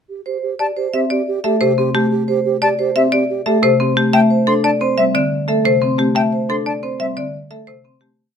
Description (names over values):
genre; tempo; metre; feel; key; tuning
classical, minimalist pattern music; 178 BPM; 6/4; straight; A minor; A4 = 440 Hz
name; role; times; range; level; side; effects
mellow hollow alto flute; second line; 0.1-3.9 s; G4; -22 LUFS; right 7 dB; none
vibraphone with medium mallets; arpeggios; 0.3-8.1 s; C4 to C5; -21 LUFS; right 5 dB; none
marimba with hard mallets; melody; 0.6-8.2 s; G4 to E5; -19 LUFS; left 6 dB; none
bright concert flute; arpeggios; 0.6-7.1 s; E5 to C6; -20 LUFS; left 2 dB; none
marimba with medium hard mallets; accompaniment; 1.4-8.2 s; C3 to C4; -18 LUFS; equal; none
room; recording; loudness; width
little or no reverb; none; -14 LUFS; side -7 dB against mid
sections
0.1-8.2 A section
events
fade-out 6.2-8.2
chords
0.1 Am7